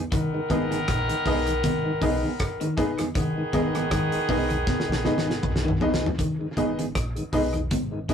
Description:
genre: roots reggae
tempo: 79 BPM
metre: 4/4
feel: swing 56% on 16ths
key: G# minor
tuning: A4 = 441 Hz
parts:
  - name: mellow electric guitar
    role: accompaniment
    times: 0.0-8.1 s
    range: B3 to G#4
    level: -32 LUFS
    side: right 5 dB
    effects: none
  - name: mellow tonewheel organ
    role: accompaniment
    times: 0.0-8.1 s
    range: G#2 to D#4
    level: -32 LUFS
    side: left 1 dB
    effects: slow rotary speaker, dub echo
  - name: clear horn section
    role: second line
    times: 0.1-5.8 s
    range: D#3 to A#4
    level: -28 LUFS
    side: equal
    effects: none
  - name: electric guitar through a small old amp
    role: arpeggios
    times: 0.1-8.1 s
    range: B2 to D#3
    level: -30 LUFS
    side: left 2 dB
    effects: spring reverb
  - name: damped 70s drum kit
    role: drums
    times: 0.1-8.1 s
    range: hi-hat, kick drum, rim click, snare drum, toms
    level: -29 LUFS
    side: equal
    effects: dub echo
  - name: congas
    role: percussion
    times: 0.1-8.1 s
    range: none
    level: -37 LUFS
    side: right 1 dB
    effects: none
  - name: bright grand piano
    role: stabs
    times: 0.5-8.1 s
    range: D#4 to D#5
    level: -29 LUFS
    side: left 3 dB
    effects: none
  - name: deep dub fingered electric bass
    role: bass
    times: 0.5-8.1 s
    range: G#1 to B1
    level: -30 LUFS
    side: equal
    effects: none
room: moderate studio reverb, RT60 0.5 s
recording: rough rehearsal-room recording, warm saturation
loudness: -22 LUFS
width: side -8 dB against mid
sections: 0.0-6.2 A section; 6.2-8.1 B section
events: drum fill 4.7-6.2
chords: 0.0 G#m

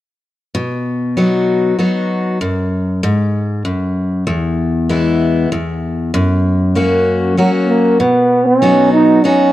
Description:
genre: country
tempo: 97 BPM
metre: 3/4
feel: straight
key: B major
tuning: A4 = 440 Hz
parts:
  - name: picked steel-string acoustic guitar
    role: accompaniment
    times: 0.5-9.5 s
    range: E2 to F#4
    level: -14 LUFS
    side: left 1 dB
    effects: none
  - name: breathy trombone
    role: melody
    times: 7.4-9.5 s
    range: F#3 to D#4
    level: -10 LUFS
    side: right 1 dB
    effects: none
room: small room reverb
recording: dry, close 1970s-style studio recording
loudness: -12 LUFS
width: side -14 dB against mid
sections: 0.5-8.0 A section; 8.0-9.5 B section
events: none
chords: 0.5 B; 4.3 E; 6.1 F#; 8.0 B

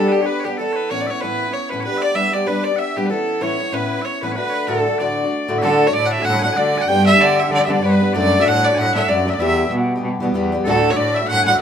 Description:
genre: celtic folk, Celtic reel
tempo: 191 BPM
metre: 4/4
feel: swing 57% on 8ths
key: D major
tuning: A4 = 441 Hz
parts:
  - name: bright fiddle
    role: melody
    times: 0.0-11.6 s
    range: G4 to G5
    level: -19 LUFS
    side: right 2 dB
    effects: none
  - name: loud bright bagpipes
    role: second line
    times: 0.0-11.6 s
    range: G4 to G#5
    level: -26 LUFS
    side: left 4 dB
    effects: none
  - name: picked steel-string acoustic guitar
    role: accompaniment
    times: 0.0-11.6 s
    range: D2 to G4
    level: -20 LUFS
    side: left 2 dB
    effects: none
  - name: rich cello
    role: bass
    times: 5.6-11.6 s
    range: D2 to D3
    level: -20 LUFS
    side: right 1 dB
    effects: none
room: wet studio ambience, RT60 0.5 s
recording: minimal, uncompressed stereo recording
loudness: -15 LUFS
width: side -8 dB against mid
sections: 0.0-5.6 A section; 5.6-11.6 B section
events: none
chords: 0.0 G; 0.6 Aadd9; 1.8 G; 3.1 Aadd9; 4.4 D; 6.9 G; 8.1 D/F#; 9.4 Em; 10.7 D

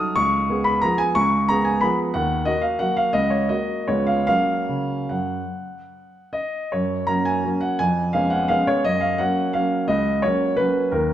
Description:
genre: classical, piano waltz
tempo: 141-191 BPM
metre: 3/4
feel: rubato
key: F# major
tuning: A4 = 440 Hz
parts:
  - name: warm baby grand piano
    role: solo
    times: 0.0-11.1 s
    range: C#2 to Eb6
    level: -19 LUFS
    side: equal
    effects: none
room: moderate scoring stage reverb, RT60 1.8 s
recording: dark, warm production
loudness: -19 LUFS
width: side -11 dB against mid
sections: 0.0-6.7 A section; 6.7-11.1 B section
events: none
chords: 0.2 C#7; 2.2 D#m; 3.2 F#/C#; 3.9 C#7; 4.3 F#; 7.8 C#7/E#; 8.9 F#

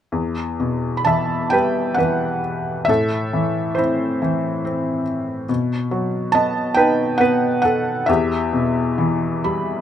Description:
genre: classical, lyrical solo piano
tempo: 63-71 BPM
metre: 3/4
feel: rubato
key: E harmonic minor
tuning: A4 = 440 Hz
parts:
  - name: felt-muted upright piano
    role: solo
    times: 0.1-9.8 s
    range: E2 to B5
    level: -18 LUFS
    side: equal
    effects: none
room: little or no reverb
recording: close, detailed microphones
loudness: -17 LUFS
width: side -10 dB against mid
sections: 0.1-9.8 A section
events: felt piano fill 9.0-9.8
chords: 0.1 Emadd9; 2.9 Am; 5.5 B; 8.1 Em

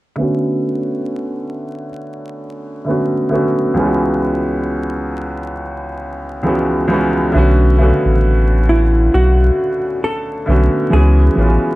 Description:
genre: lo-fi hip hop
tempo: 67 BPM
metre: 4/4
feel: swing 57% on 16ths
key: B dorian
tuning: A4 = 445 Hz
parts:
  - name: warm upright piano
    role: accompaniment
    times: 0.2-11.8 s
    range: C#2 to F#4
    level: -16 LUFS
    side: equal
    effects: low-pass filter
  - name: warm sub bass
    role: bass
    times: 7.4-11.6 s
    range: A1 to C#2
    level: -12 LUFS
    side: equal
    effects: none
  - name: hollow-body jazz guitar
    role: melody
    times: 8.7-11.8 s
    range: E4 to A4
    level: -18 LUFS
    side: equal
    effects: low-pass filter
room: moderate studio reverb, RT60 0.5 s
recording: dark, warm production, vinyl crackle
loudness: -13 LUFS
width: side -18 dB against mid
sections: 0.2-7.3 A section; 7.3-11.8 B section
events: filter sweep on upright piano 0.2-7.3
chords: 0.2 Bm9; 3.8 F#7sus4/C#; 7.3 Bm9; 10.9 F#7sus4

